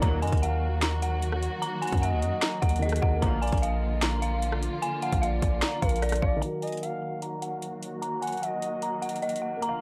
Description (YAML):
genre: hip hop, trap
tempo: 150 BPM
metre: 4/4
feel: half-time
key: Eb harmonic minor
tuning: A4 = 440 Hz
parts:
  - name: dark detuned synth bell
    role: melody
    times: 0.0-9.8 s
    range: D5 to Bb5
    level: -34 LUFS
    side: equal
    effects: chorus, low-pass filter
  - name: dark concert grand piano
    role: accompaniment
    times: 0.0-9.8 s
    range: Eb3 to F5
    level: -40 LUFS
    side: equal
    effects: low-pass filter
  - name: dark symphonic string section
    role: sustained chords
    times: 0.0-9.8 s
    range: D3 to Gb4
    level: -38 LUFS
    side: equal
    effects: low-pass filter
  - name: sync-sweep polysynth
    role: stabs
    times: 0.0-0.2, 3.2-3.4 s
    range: D2 to Gb3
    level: -40 LUFS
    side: equal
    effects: chorus, tape echo
  - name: hard-hitting 808-style bass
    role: bass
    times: 0.0-6.4 s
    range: Bb1 to Gb2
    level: -30 LUFS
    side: equal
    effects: none
  - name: trap drum kit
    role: drums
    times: 0.0-9.7 s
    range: finger snaps, hi-hat, kick drum, rim click, snare drum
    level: -32 LUFS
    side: equal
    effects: none
  - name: gliding portamento lead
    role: second line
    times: 0.2-9.2 s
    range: Bb4 to Gb5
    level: -39 LUFS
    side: equal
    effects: chorus, tape echo
room: digital ambience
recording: dry, gritty hardware recording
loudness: -28 LUFS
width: mono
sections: 0.0-6.4 A section; 6.4-9.8 B section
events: filter sweep 6.4-9.8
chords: 0.0 Ebm; 3.2 Bb; 6.4 Ebm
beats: | 0.02 0.42 0.82 1.22 | 1.62 2.02 2.42 2.82 | 3.22 3.62 4.02 4.42 | 4.82 5.22 5.62 6.02 | 6.42 6.82 7.22 7.62 | 8.02 8.42 8.82 9.22 | 9.62